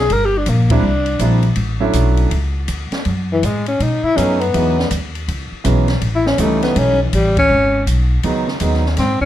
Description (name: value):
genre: jazz, small-group swing and bop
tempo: 162 BPM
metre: 4/4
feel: swing 65% on 8ths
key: unclear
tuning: A4 = 440 Hz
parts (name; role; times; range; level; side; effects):
- breathy tenor saxophone; melody; 0.0-9.3 s; E3 to Bb4; -16 LUFS; left 2 dB; none
- upright bass; bass; 0.0-9.2 s; G1 to B2; -17 LUFS; equal; none
- open jazz drum kit; drums; 0.1-9.3 s; hi-hat, kick drum, ride cymbal, snare drum; -25 LUFS; left 1 dB; none
- warm grand piano; accompaniment; 0.7-8.8 s; D#3 to E4; -20 LUFS; right 3 dB; none
room: light reverb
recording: dark, warm production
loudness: -14 LUFS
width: side -12 dB against mid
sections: 0.0-9.3 A section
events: band accent 0.7, 7.3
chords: 0.1 Gm; 0.8 C9; 1.6 Dmaj9; 3.1 F#m; 3.8 B7; 4.5 Emaj7; 6.0 A7#11; 7.5 G#m7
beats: | 0.10 0.47 0.84 1.21 | 1.58 1.95 2.32 2.69 | 3.06 3.42 3.79 4.17 | 4.53 4.90 5.27 5.64 | 6.01 6.38 6.75 7.12 | 7.49 7.86 8.23 8.60 | 8.97